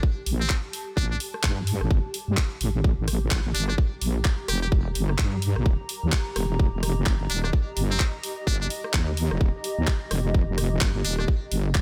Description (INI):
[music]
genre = bass house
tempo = 128 BPM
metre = 4/4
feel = swing 60% on 16ths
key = G minor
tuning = A4 = 439 Hz
[part]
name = electronic kick drum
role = drums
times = 0.0-11.8 s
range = none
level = -25 LUFS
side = equal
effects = studio reverb
[part]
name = granular cloud pad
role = texture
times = 0.0-11.8 s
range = G4 to Bb5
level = -38 LUFS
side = equal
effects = built-in reverb, sidechain pumping
[part]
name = wobble bass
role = bass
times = 0.3-11.8 s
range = Eb1 to G2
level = -28 LUFS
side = equal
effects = chorus, overdrive, sidechain pumping
[part]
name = garage drum kit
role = drums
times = 0.3-11.8 s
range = handclaps, hi-hat, rim click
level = -33 LUFS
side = equal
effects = studio reverb
[part]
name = trumpet with metal mute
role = melody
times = 0.4-11.2 s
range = C4 to G4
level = -34 LUFS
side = equal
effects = tape echo
[sound]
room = little or no reverb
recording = none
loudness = -25 LUFS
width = mono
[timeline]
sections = 0.0-11.8 A section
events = filter sweep on wobble bass 0.0-11.8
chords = 0.0 Gmadd9; 5.7 Eb